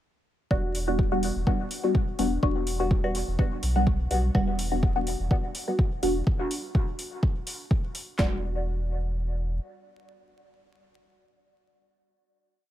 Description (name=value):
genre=dub techno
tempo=125 BPM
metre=4/4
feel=swing 54% on 16ths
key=E minor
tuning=A4 = 440 Hz
part: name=filtered dub chord stab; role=stabs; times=0.5-11.4 s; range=G3 to F#4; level=-28 LUFS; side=left 1 dB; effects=phaser, sidechain pumping, dub echo
part: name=warm sub bass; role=bass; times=0.5-9.6 s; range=E1 to B1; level=-29 LUFS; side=equal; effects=sidechain pumping
part: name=deep house drum kit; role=drums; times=0.5-8.3 s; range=handclaps, kick drum, snare drum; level=-24 LUFS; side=equal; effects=overdrive
part: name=electronic hi-hat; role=drums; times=0.7-8.1 s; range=none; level=-36 LUFS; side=equal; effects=overdrive
room=little or no reverb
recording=vinyl crackle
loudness=-24 LUFS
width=side -12 dB against mid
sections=0.5-8.2 groove; 8.2-12.0 final chord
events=none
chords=0.5 Em7